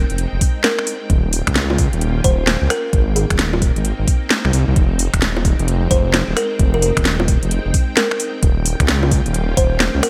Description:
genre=UK garage, two-step garage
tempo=131 BPM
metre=4/4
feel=swing 63% on 16ths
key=F minor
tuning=A4 = 440 Hz
part: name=soft string machine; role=sustained chords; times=0.0-10.1 s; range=Ab3 to G5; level=-31 LUFS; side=equal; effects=ensemble chorus, sidechain pumping
part: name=dark detuned saw bass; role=bass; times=0.0-10.0 s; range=Eb1 to Db2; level=-21 LUFS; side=equal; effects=none
part: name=garage drum kit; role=drums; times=0.1-10.1 s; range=bongos, finger snaps, hi-hat, snare drum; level=-22 LUFS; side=equal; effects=none
part: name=electronic kick drum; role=drums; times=0.4-9.7 s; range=none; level=-19 LUFS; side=equal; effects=none
part: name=kalimba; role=melody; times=0.6-10.1 s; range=Ab4 to C5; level=-25 LUFS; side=equal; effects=none
room=light reverb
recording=bright 1980s-style digital production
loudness=-17 LUFS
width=mono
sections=0.0-10.1 A section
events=none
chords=0.0 Fm9; 1.1 Eb7; 2.9 Abmaj9; 4.8 Fm9; 8.4 Eb7

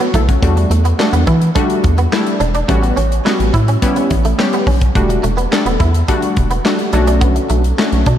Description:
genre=early-eighties boogie funk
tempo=106 BPM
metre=4/4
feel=straight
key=E dorian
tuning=A4 = 441 Hz
part: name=funky polysynth comp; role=accompaniment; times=0.0-8.1 s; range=G3 to C#5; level=-17 LUFS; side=left 2 dB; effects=chorus
part: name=direct-recorded clean electric guitar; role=riff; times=0.0-8.2 s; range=A3 to E4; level=-22 LUFS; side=right 3 dB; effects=ensemble chorus
part: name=modern studio drum kit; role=drums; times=0.0-8.2 s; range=handclaps, hi-hat, kick drum, snare drum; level=-18 LUFS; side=equal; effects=none
part: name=rubbery square bass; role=bass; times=0.1-8.2 s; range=E1 to E3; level=-14 LUFS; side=equal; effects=none
room=moderate lush hall reverb, RT60 2.2 s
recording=dreamy mix soaked in reverb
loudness=-12 LUFS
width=side -10 dB against mid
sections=0.0-8.2 A section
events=none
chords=0.4 Em11; 2.7 A13; 5.0 Em11; 6.9 Bm9

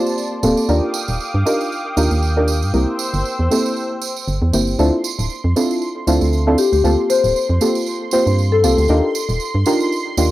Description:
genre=deep house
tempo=117 BPM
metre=4/4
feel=swing 55% on 16ths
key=D minor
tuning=A4 = 439 Hz
part: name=warm analog pad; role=sustained chords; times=0.0-4.8 s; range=Bb3 to E6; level=-26 LUFS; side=equal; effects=chorus, cassette tape
part: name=deep mellow chord stab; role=stabs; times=0.0-10.3 s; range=Bb3 to C5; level=-18 LUFS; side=equal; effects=chorus, cassette tape, tape echo
part: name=tambourine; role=percussion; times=0.1-10.3 s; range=none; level=-27 LUFS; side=right 9 dB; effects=none
part: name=organ-like FM bass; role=bass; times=0.4-10.3 s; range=D1 to G2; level=-17 LUFS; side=equal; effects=none
part: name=analog string pad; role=texture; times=4.8-10.3 s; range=C6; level=-30 LUFS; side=right 4 dB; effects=ensemble chorus, cassette tape
part: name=marimba with soft mallets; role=melody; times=6.6-8.9 s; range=G4 to C5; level=-19 LUFS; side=left 4 dB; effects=tape echo
room=moderate studio reverb, RT60 0.6 s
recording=home recording on cassette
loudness=-15 LUFS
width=side -15 dB against mid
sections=0.0-4.8 A section; 4.8-10.3 B section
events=drop 4.8-10.3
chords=0.0 Gm11; 0.7 Ebmaj9; 2.7 C7; 4.8 Dm9; 6.6 Gm11/D; 8.9 Ebmaj9

